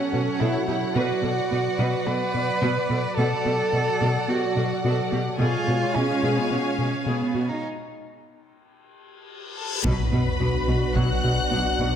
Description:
cinematic, hybrid orchestral and electronic film score; 108 BPM; 4/4; straight; B minor; A4 = 443 Hz
rich cello; melody; 0.0-7.6 s; B3 to B4; -26 LUFS; right 3 dB; tape echo
rich symphonic violin section; second line; 0.0-12.0 s; A4 to G#5; -32 LUFS; left 2 dB
rich studio viola section; accompaniment; 0.0-12.0 s; F#3 to D5; -31 LUFS; right 1 dB
warm analog pad; sustained chords; 0.0-12.0 s; F#3 to D5; -30 LUFS; equal; chorus
rubbery square bass; riff; 0.1-12.0 s; B2 to B3; -28 LUFS; left 3 dB
clear symphonic cello section; bass; 0.1-11.9 s; B2; -30 LUFS; right 3 dB
reverse cymbal and sub drop; sound effects; 9.3-12.0 s; -32 LUFS; left 2 dB
rich symphonic violin section; melody; 9.6-12.0 s; A5 to F#6; -30 LUFS; left 2 dB
clear trombone section; sustained chords; 9.8-12.0 s; F#3 to B3; -35 LUFS; right 7 dB
clear studio double bass section; bass; 9.8-11.9 s; B1; -32 LUFS; right 3 dB
warm sub bass; bass; 9.8-12.0 s; B1; -29 LUFS; left 1 dB
solo taiko drums; drums; 9.8-11.5 s; -30 LUFS; equal
warm French horn section; sustained chords; 9.9-12.0 s; D4 to F#4; -32 LUFS; left 3 dB
moderate scoring stage reverb, RT60 1.9 s; -21 LUFS; side -8 dB against mid
0.0-9.8 A section; 9.8-12.0 B section
break 7.6-9.8; reverse cymbal 9.3-9.8; impact 9.8-12.0
0.0 F#m/B; 1.0 Bm; 3.2 D/B; 5.4 C#7/B; 7.6 N.C.; 9.8 Bm

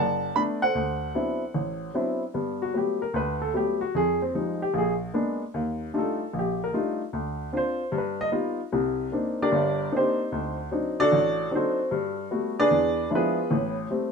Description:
solo jazz; 150 BPM; 4/4; swing 66% on 8ths; G major; A4 = 439 Hz
warm upright piano; solo; 0.0-14.1 s; F#1 to B5; -24 LUFS; equal
moderate studio reverb, RT60 0.5 s; minimal, uncompressed stereo recording; -24 LUFS; side -5 dB against mid
0.0-2.3 A section; 2.3-14.1 B section
upright piano solo 2.3-14.1
0.0 Bm7; 0.7 D13; 2.3 Gmaj9; 3.9 Fm9; 4.7 Bb7b9; 5.5 Ebmaj9#11; 7.1 Dm7; 7.9 Gaug7; 8.7 Cm9; 10.3 D7b9; 11.9 Gmaj9; 12.7 E7b9; 13.5 Am7

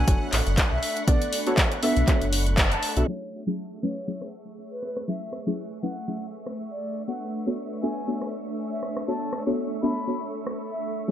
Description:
deep house; 120 BPM; 4/4; swing 56% on 16ths; A4 = 440 Hz
mellow hollow silver concert flute; melody; 0.0-11.1 s; B4 to B5; -34 LUFS; equal; vintage 12-bit sampler grit, tape echo
soft string machine; sustained chords; 0.0-11.1 s; A3 to C#6; -34 LUFS; equal; ensemble chorus, sidechain pumping
sub bass with octave; bass; 0.0-3.0 s; F#1 to B1; -25 LUFS; equal; sidechain pumping
analog string pad; texture; 0.0-11.1 s; E5 to F#6; -42 LUFS; right 2 dB; ensemble chorus
deep mellow chord stab; stabs; 0.1-11.1 s; F#3 to E5; -28 LUFS; left 1 dB; chorus, sidechain pumping, digital delay
deep house drum kit; drums; 0.1-10.6 s; handclaps, hi-hat, rim click; -28 LUFS; equal; low-pass filter on hats, low-pass filter on snare, low-pass filter on room
electronic kick drum; drums; 0.1-2.7 s; -22 LUFS; equal
light reverb; low-pass filter; -24 LUFS; side -10 dB against mid
0.0-3.1 A section; 3.1-11.1 B section
band accent 2.6; filter sweep on synth stab 3.1-11.1; filter sweep on string machine 3.1-11.1; filter sweep 3.1-11.1
0.0 Bm9; 3.1 F#m9; 6.8 Bm9

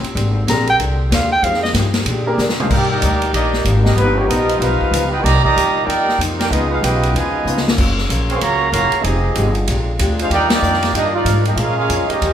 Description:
jazz, big band swing; 189 BPM; 4/4; swing 61% on 8ths; Eb major; A4 = 440 Hz
archtop guitar, miked and amplified; accompaniment; 0.0-12.3 s; G2 to C5; -26 LUFS; left 3 dB
mellow saxophone section; sustained chords; 0.0-12.3 s; Db3 to D5; -26 LUFS; left 2 dB
upright bass; bass; 0.0-12.3 s; F1 to D3; -19 LUFS; equal
swinging big-band drum kit; drums; 0.0-12.3 s; crash cymbal, hi-hat, kick drum, ride cymbal, snare drum, toms; -22 LUFS; left 1 dB
warm clarinet; melody; 0.5-1.7 s; Eb5 to Bb5; -17 LUFS; right 1 dB
warm concert grand piano; accompaniment; 0.5-2.4 s; Ab3 to C5; -23 LUFS; equal
mellow trumpet section; melody; 2.6-12.3 s; Bb3 to C6; -18 LUFS; right 2 dB
mellow trombone section; second line; 2.6-12.3 s; Cb3 to G4; -23 LUFS; right 4 dB
wet large studio reverb, RT60 1.3 s; band playing live in one room; -14 LUFS; side -9 dB against mid
0.0-2.7 A section; 2.7-12.3 B section
clarinet solo 0.0-2.7; drum fill 2.4-2.7, 7.5-7.8; band accent 10.5
0.2 Abmaj9#11; 1.4 Fm9; 2.1 Bb13; 2.7 Ebmaj7; 4.0 G7alt; 5.2 Cm11; 6.5 Db9; 7.8 Gbmaj7; 9.0 Fm9; 9.7 Bb13; 10.3 Ebmaj7; 11.6 Bbm7

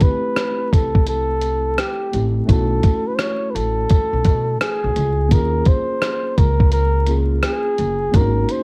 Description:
hip hop, jazz-hop; 85 BPM; 4/4; swing 64% on 16ths; A4 = 440 Hz
breathy flugelhorn; melody; 0.0-8.6 s; G4 to C#5; -24 LUFS; equal
tine electric piano; accompaniment; 0.0-8.6 s; A3 to Ab4; -28 LUFS; equal; overdrive, cassette tape
dusty soul sampler-style drum kit; drums; 0.0-8.6 s; hi-hat, kick drum, rim click; -19 LUFS; equal; cassette tape
upright bass; bass; 0.7-8.4 s; Gb1 to B2; -22 LUFS; equal; transformer saturation
little or no reverb; home recording on cassette, vinyl crackle; -18 LUFS; mono
0.0-8.6 A section
0.0 D9sus4 (rootless); 2.5 B9sus4; 5.3 Eb9sus4 (rootless)

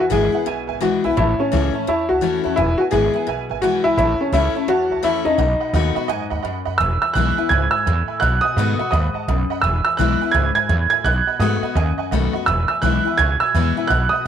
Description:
rock; 170 BPM; 4/4; swing 63% on 8ths; E major; A4 = 440 Hz
warm upright piano; melody; 0.0-14.3 s; C#4 to G#6; -19 LUFS; right 1 dB
honky-tonk upright piano; accompaniment; 0.0-14.2 s; B4 to C#6; -28 LUFS; right 14 dB
picked steel-string acoustic guitar; accompaniment; 0.0-14.3 s; E2 to F#4; -24 LUFS; left 12 dB
upright bass; bass; 0.1-14.2 s; E1 to G#2; -21 LUFS; right 1 dB
moderate spring reverb, RT60 1.8 s, small room ambience; 1960s-style stereo with parts hard left and right; -16 LUFS; side -8 dB against mid
0.0-6.8 A section; 6.8-14.3 B section
0.0 E; 1.2 A; 2.6 E; 4.0 A; 5.4 B7; 6.8 E; 8.2 B7; 9.6 E; 11.1 B7; 12.5 E

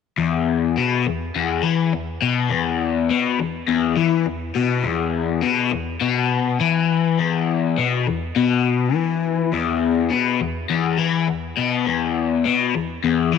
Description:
rock; 103 BPM; 4/4; straight; A4 = 440 Hz
crunchy overdriven guitar; solo; 0.2-13.4 s; E2 to E3; -18 LUFS; left 7 dB; phaser
light reverb, digital ambience; -18 LUFS; side -6 dB against mid
0.2-13.4 A section

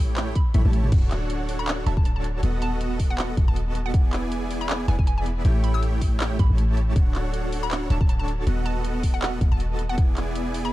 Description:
future bass; 159 BPM; 4/4; swing 56% on 16ths, half-time; D major; A4 = 440 Hz
dense compressed supersaw; riff; 0.0-10.7 s; A3 to B5; -30 LUFS; right 1 dB; sidechain pumping
warm 808-style bass; bass; 0.0-10.7 s; D1 to A1; -24 LUFS; equal; tube saturation, sidechain pumping
pop drum kit; drums; 0.2-10.6 s; crash cymbal, handclaps, hi-hat, toms; -31 LUFS; equal
hollow square pluck; melody; 0.4-10.7 s; F#5 to E6; -35 LUFS; equal; chorus, sidechain pumping, ping-pong delay
electronic kick drum; drums; 0.4-10.1 s; -21 LUFS; equal
little or no reverb; -21 LUFS; side -16 dB against mid
0.0-10.7 A section
drum fill 0.5-0.9
0.0 A7; 0.9 Dmaj7; 2.4 B7/D#; 3.9 E7; 5.4 A7; 7.0 Dmaj7; 8.5 B7/D#; 10.0 E7

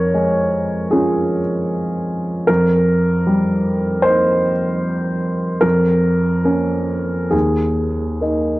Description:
neoclassical minimalist piano; 66-77 BPM; 4/4; rubato; A4 = 440 Hz
warm upright piano; solo; 0.0-8.6 s; Eb2 to Db5; -15 LUFS; equal
wet studio reverb, RT60 0.6 s; worn, warbling old tape, cassette tape, warbly pitch drift; -15 LUFS; side -18 dB against mid
0.0-8.6 A section
0.0 Db/F; 2.5 Eb/F; 5.6 Bbm/F; 7.3 Ebsus4

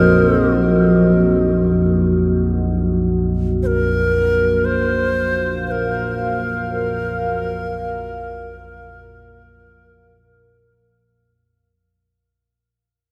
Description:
dark ambient drone; free time; A4 = 442 Hz
bright reedy long shakuhachi; melody; 0.0-10.8 s; Bb4 to C5; -23 LUFS; equal; delay
dark analog pad; sustained chords; 0.0-11.8 s; Bb3 to F5; -24 LUFS; equal; chorus, phaser
analog drone; drone; 0.0-11.9 s; Bb1 to F2; -20 LUFS; equal; chorus
wet cathedral reverb, RT60 7.4 s; in a vast, echoing space; -18 LUFS; mono
0.0-11.8 A section
fade-out 0.9-11.8
0.0 Ebm/Bb

